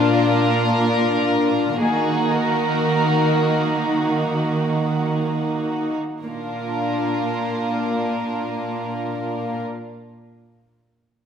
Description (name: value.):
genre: cinematic, emotional film score for orchestra.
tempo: free time.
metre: none.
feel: none.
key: unclear.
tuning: A4 = 440 Hz.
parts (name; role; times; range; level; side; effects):
rich studio violin section; melody; 0.0-9.6 s; Ab4 to Bb4; -26 LUFS; left 2 dB; none.
rich symphonic violin section; second line; 0.0-9.6 s; D4 to Gb4; -24 LUFS; equal; none.
warm studio viola section; accompaniment; 0.0-9.6 s; Bb3 to D4; -24 LUFS; left 1 dB; none.
dark studio cello section; bass; 0.0-9.6 s; Bb2 to Eb3; -24 LUFS; right 3 dB; none.
room: wet scoring stage reverb, RT60 1.5 s.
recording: none.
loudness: -19 LUFS.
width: side -8 dB against mid.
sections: 0.0-6.2 A section; 6.2-11.1 B section.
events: slowing down 0.0-6.2.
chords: 0.0 Bb; 1.8 Ebm; 6.2 Bb.